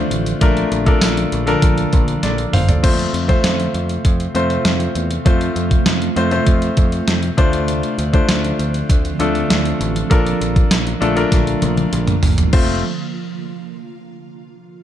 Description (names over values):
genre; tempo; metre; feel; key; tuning
1980s-style pop; 99 BPM; 4/4; straight; F major; A4 = 440 Hz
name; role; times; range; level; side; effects
clear concert grand piano; accompaniment; 0.0-12.8 s; A3 to F5; -19 LUFS; left 3 dB; none
ethereal airy pad; sustained chords; 0.0-12.8 s; C3 to F4; -25 LUFS; right 4 dB; ensemble chorus, built-in reverb, phaser
picked electric bass; bass; 0.0-12.8 s; F1 to F2; -22 LUFS; equal; none
clean 12-bit digital drum machine; drums; 0.1-12.7 s; crash cymbal, hi-hat, kick drum, snare drum, tambourine, toms; -16 LUFS; equal; vintage 12-bit sampler grit, gated reverb
room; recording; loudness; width
digital ambience; none; -14 LUFS; side -11 dB against mid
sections
0.0-2.8 A section; 2.8-12.5 B section; 12.5-14.8 C section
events
drum fill 2.2-2.8, 11.3-12.5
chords
0.4 Bbmaj7; 2.8 F; 7.4 Dm7; 10.1 Bbmaj7; 12.5 F